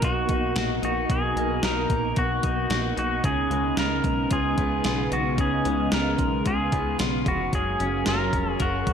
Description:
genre	dream pop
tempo	112 BPM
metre	4/4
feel	straight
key	B lydian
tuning	A4 = 441 Hz
part	pedal steel guitar	melody	0.0-8.9 s	F#4 to A#4	-27 LUFS	left 1 dB	ping-pong delay
part	soft string machine	sustained chords	0.0-8.9 s	B2 to E#5	-29 LUFS	equal	ensemble chorus
part	clean electric guitar	arpeggios	0.0-8.9 s	B2 to A#4	-29 LUFS	equal	lush chorus, ping-pong delay
part	plucky analog bass	bass	0.0-8.9 s	E#1 to C#2	-30 LUFS	equal	none
part	gated 80s digital drum machine	drums	0.0-8.9 s	hi-hat, kick drum, snare drum	-27 LUFS	equal	gated reverb, gated reverb snare, overdrive
room	light reverb, digital ambience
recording	none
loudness	-22 LUFS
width	side -7 dB against mid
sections	0.0-8.9 A section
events	none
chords	0.0 Bmaj7; 3.2 C#7; 7.5 F#maj9

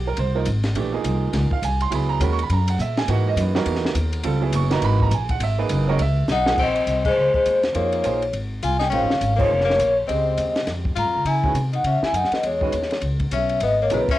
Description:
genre	modal jazz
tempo	205 BPM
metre	4/4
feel	swing 61% on 8ths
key	unclear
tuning	A4 = 440 Hz
part	bright upright piano	accompaniment	0.0-14.1 s	Db3 to Db6	-25 LUFS	right 8 dB	cassette tape
part	upright bass	bass	0.0-14.1 s	F1 to Db3	-23 LUFS	equal	tube saturation
part	compact cocktail drum kit	drums	0.2-14.1 s	crash cymbal, hi-hat, kick drum, ride cymbal, snare drum	-28 LUFS	equal	cassette tape
part	vibraphone with soft mallets	melody	6.3-14.2 s	Cb5 to Bb5	-21 LUFS	left 1 dB	cassette tape
part	breathy tenor saxophone	second line	6.3-14.2 s	Ab3 to F4	-27 LUFS	left 8 dB	cassette tape
room	light reverb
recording	home recording on cassette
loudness	-18 LUFS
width	side -14 dB against mid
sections	0.0-6.6 A section; 6.6-14.2 B section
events	drum fill 6.3; band accent 7.0, 9.4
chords	0.0 Bb9sus4; 1.9 Dbm11; 6.6 Bbm11; 11.3 Dbm11

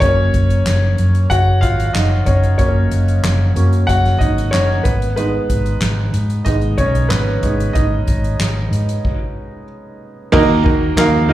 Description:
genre	piano-driven pop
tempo	93 BPM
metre	4/4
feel	straight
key	unclear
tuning	A4 = 440 Hz
part	warm concert grand piano	accompaniment	0.0-11.3 s	Eb3 to Gb5	-18 LUFS	right 1 dB	slapback echo
part	vintage muted fingered electric bass	bass	0.0-11.3 s	Gb1 to Eb3	-16 LUFS	equal	none
part	soft-mallet drum kit	drums	0.0-11.3 s	crash cymbal, handclaps, hi-hat, kick drum, ride cymbal, snare drum	-20 LUFS	equal	none
part	group handclap	percussion	11.0-11.1 s	none	barely audible	none	none
room	light reverb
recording	live gig heard through the venue's PA, club reverb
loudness	-13 LUFS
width	side -14 dB against mid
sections	0.0-10.3 A section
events	grand piano solo 0.0-10.3; stop 9.0-10.3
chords	0.0 Gb; 4.9 Abm; 10.3 Ebm

